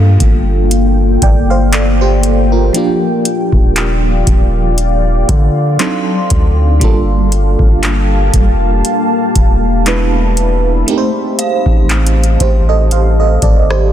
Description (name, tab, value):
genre	contemporary R&B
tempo	59 BPM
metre	4/4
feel	swing 54% on 16ths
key	G minor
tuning	A4 = 440 Hz
part	FM electric piano with tremolo	accompaniment	0.0-13.9 s	F3 to G5	-17 LUFS	right 3 dB	phaser
part	deep dark ambient pad	sustained chords	0.0-13.9 s	Bb3 to A5	-17 LUFS	left 3 dB	chorus, built-in reverb
part	long sustained 808-style bass	bass	0.0-13.9 s	Eb1 to D3	-12 LUFS	equal	none
part	synth chime	texture	0.0-13.2 s	F5 to C6	-26 LUFS	equal	ensemble chorus, tremolo, ping-pong delay
part	booming analog drum machine	drums	0.2-13.9 s	handclaps, hi-hat, kick drum, rim click	-13 LUFS	equal	none
room	little or no reverb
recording	dense, heavily limited modern master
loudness	-9 LUFS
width	side -11 dB against mid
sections	0.0-13.9 A section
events	none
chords	0.0 Gm9; 2.7 Ebmaj9; 5.8 D7b9; 6.8 Gm9; 9.9 E7; 10.9 Am7b5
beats	0.71 1.73 | 2.74 3.76 4.78 5.79 | 6.81 7.83 8.85 9.86 | 10.88 11.90 12.91